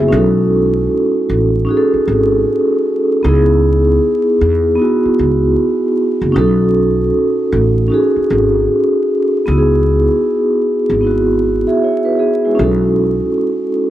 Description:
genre	lo-fi hip hop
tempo	77 BPM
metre	4/4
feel	swing 64% on 16ths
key	C# minor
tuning	A4 = 440 Hz
part	vibraphone with soft mallets	accompaniment	0.0-13.9 s	G#3 to E5	-12 LUFS	right 1 dB	cassette tape, low-pass filter, plate reverb
part	upright bass	bass	0.0-13.2 s	F#1 to E2	-16 LUFS	equal	none
room	moderate studio reverb, RT60 0.6 s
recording	vinyl crackle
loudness	-11 LUFS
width	side -12 dB against mid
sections	0.0-9.5 A section; 9.5-13.9 B section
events	none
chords	0.1 B7; 3.2 C#m7; 6.3 B7; 9.5 C#m7; 12.6 B7

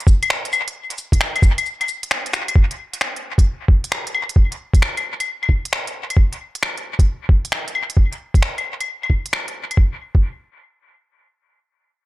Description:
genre	future garage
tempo	133 BPM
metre	4/4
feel	swing 66% on 16ths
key	none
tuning	none
part	organic electronic drum kit	drums	0.0-9.8 s	cabasa, claves, finger snaps, hi-hat	-22 LUFS	left 2 dB	dub echo
part	electronic kick drum	drums	0.1-10.3 s	none	-13 LUFS	equal	none
room	little or no reverb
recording	echo-heavy mix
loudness	-17 LUFS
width	side -18 dB against mid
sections	0.0-2.6 A section; 2.6-9.8 B section; 9.8-12.1 C section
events	break 1.7-2.6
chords	none

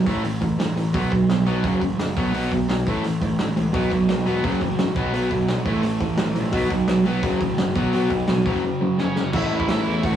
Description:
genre	punk rock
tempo	172 BPM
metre	4/4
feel	straight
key	unclear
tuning	A4 = 440 Hz
part	crunchy overdriven guitar	riff	0.0-10.2 s	F#2 to E4	-24 LUFS	left 4 dB	none
part	sludgy distorted guitar	riff	0.0-10.2 s	F#2 to B3	-25 LUFS	right 6 dB	overdrive
part	fuzz picked electric bass	bass	0.0-10.2 s	E1 to E2	-26 LUFS	right 1 dB	overdrive
part	loose indie drum kit	drums	0.1-10.1 s	crash cymbal, hi-hat, kick drum, snare drum	-27 LUFS	right 1 dB	none
part	distorted electric guitar	riff	3.7-10.2 s	F#2 to B3	-27 LUFS	right 1 dB	distortion
part	biting lead guitar	melody	9.0-10.2 s	C#4 to F#5	-28 LUFS	right 1 dB	overdrive
room	moderate small room reverb, RT60 0.5 s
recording	rough rehearsal-room recording, tube saturation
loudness	-19 LUFS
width	side -10 dB against mid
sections	0.0-9.3 A section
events	break 8.6-9.3; drum fill 9.0-9.3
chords	0.1 A5; 0.9 B5; 1.6 F#m; 2.2 B5; 2.9 A; 3.7 B5; 4.4 F#m; 5.0 B5; 5.7 A5; 6.5 B5; 7.2 F#m; 7.8 B5; 8.5 F#5; 9.3 A

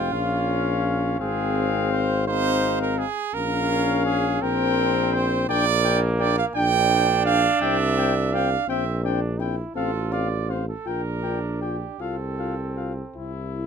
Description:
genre	classical, brass quintet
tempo	56 BPM (dotted quarters)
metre	6/8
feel	rubato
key	F minor, F major from 5.5 s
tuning	A4 = 441 Hz
part	warm trumpet	melody	0.0-13.7 s	E4 to G5	-29 LUFS	left 10 dB	none
part	mellow trumpet	second line	0.0-13.2 s	F4 to G5	-25 LUFS	right 8 dB	none
part	bright trombone	accompaniment	0.0-13.7 s	Bb3 to F4	-30 LUFS	right 3 dB	none
part	mellow French horn	accompaniment	0.0-13.7 s	C4 to F4	-29 LUFS	left 6 dB	none
part	mellow bass trombone	bass	0.0-13.7 s	F1 to C2	-26 LUFS	equal	none
room	light reverb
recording	close, detailed microphones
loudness	-21 LUFS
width	side -6 dB against mid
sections	0.0-13.7 A section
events	none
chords	0.1 Bbm; 1.2 Fm/Ab; 3.3 Bbm; 4.4 C5/Bb; 5.5 Gm/Bb; 7.6 C; 8.7 C5/Bb; 9.8 F/A; 10.9 Gm7/Bb; 12.0 F/C; 13.2 C

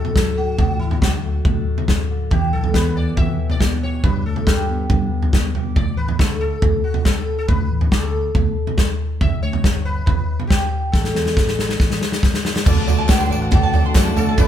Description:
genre	indie folk with a building arrangement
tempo	139 BPM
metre	4/4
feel	straight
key	D major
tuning	A4 = 436 Hz
part	sitar	melody	0.0-14.5 s	E4 to E5	-26 LUFS	equal	none
part	fingerpicked steel-string acoustic guitar	accompaniment	0.0-5.7 s	G2 to G4	-28 LUFS	left 1 dB	none
part	natural country drum kit	drums	0.0-14.5 s	crash cymbal, kick drum, snare drum, toms	-17 LUFS	equal	none
part	fingered electric bass	bass	0.6-14.5 s	G1 to G2	-24 LUFS	left 1 dB	none
part	mellow French horn	second line	12.7-14.5 s	A3	-27 LUFS	right 3 dB	none
part	picked twelve-string acoustic guitar	accompaniment	12.7-14.5 s	D3 to F#4	-29 LUFS	left 2 dB	none
part	warm upright piano	accompaniment	12.7-14.5 s	D2 to E5	-30 LUFS	left 6 dB	none
part	rich chamber string section	sustained chords	12.7-14.5 s	D4 to A5	-31 LUFS	left 4 dB	none
part	bluegrass banjo	arpeggios	12.7-14.5 s	D5 to C6	-27 LUFS	right 7 dB	none
part	tambourine	percussion	12.7-14.5 s	none	-34 LUFS	right 7 dB	none
part	group handclap	percussion	13.1-14.1 s	none	-33 LUFS	left 3 dB	none
room	little or no reverb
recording	band playing live in one room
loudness	-16 LUFS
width	side -10 dB against mid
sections	0.0-12.7 A section; 12.7-14.5 B section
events	drum fill 10.9-12.7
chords	0.0 D; 2.3 Em; 4.0 G; 5.8 D5; 9.2 G; 10.9 A5; 12.7 D

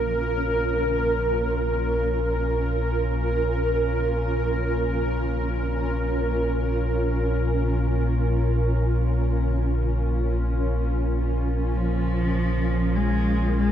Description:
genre	dark ambient drone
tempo	free time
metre	none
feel	none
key	Bb minor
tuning	A4 = 440 Hz
part	granular cloud pad	sustained chords	0.0-13.7 s	Db4 to Bb4	-25 LUFS	right 1 dB	built-in reverb, shimmer reverb
part	deep rumbling drone	drone	0.0-13.7 s	Bb1 to Bb2	-24 LUFS	equal	built-in reverb, phaser, lush chorus
part	dark cello	melody	11.7-13.7 s	F3 to Ab3	-24 LUFS	equal	analog delay
room	wet plate reverb, RT60 2.2 s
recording	echo-heavy mix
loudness	-22 LUFS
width	side -10 dB against mid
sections	0.0-13.7 A section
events	none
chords	0.0 Bbm

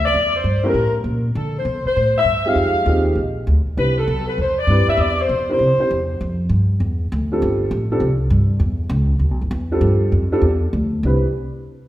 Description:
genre	jazz, big band swing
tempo	198 BPM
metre	4/4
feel	swing 63% on 8ths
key	C major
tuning	A4 = 442 Hz
part	mellow saxophone section	melody	0.0-6.1 s	A4 to F5	-19 LUFS	left 1 dB	none
part	upright bass	bass	0.0-11.2 s	G1 to D3	-18 LUFS	equal	none
part	dark upright piano	accompaniment	0.6-11.2 s	G3 to C5	-22 LUFS	right 1 dB	none
room	wet recital hall reverb, RT60 1.5 s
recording	recorded in a church or concert hall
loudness	-16 LUFS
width	side -14 dB against mid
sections	0.0-6.2 A section; 6.2-11.0 B section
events	none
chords	0.1 Edim; 0.7 N.C.; 1.4 D9sus4; 2.6 Fm7; 3.2 Bb; 3.8 Cmaj9; 5.6 C; 6.2 Fsus2; 7.4 G9sus4; 8.6 Em7; 9.8 G9sus4; 11.0 Cmaj9

